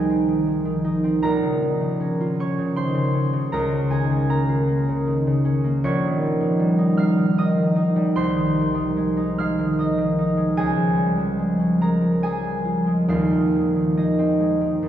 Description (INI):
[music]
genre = classical, solo harp piece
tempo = 68-81 BPM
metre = 3/4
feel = rubato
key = Ab major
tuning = A4 = 440 Hz
[part]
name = concert harp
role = solo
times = 0.0-14.9 s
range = Eb1 to F6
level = -19 LUFS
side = equal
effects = none
[sound]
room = wet church reverb, RT60 3.3 s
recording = heard from further back in the room, small room reverb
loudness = -19 LUFS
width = side -10 dB against mid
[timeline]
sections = 0.0-14.9 A section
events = none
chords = 0.0 Ab/C; 1.2 Bbm; 3.5 Bbm/Db; 5.8 Eb7/Bb; 8.1 Ab/C; 10.6 Db; 13.1 Ab/Eb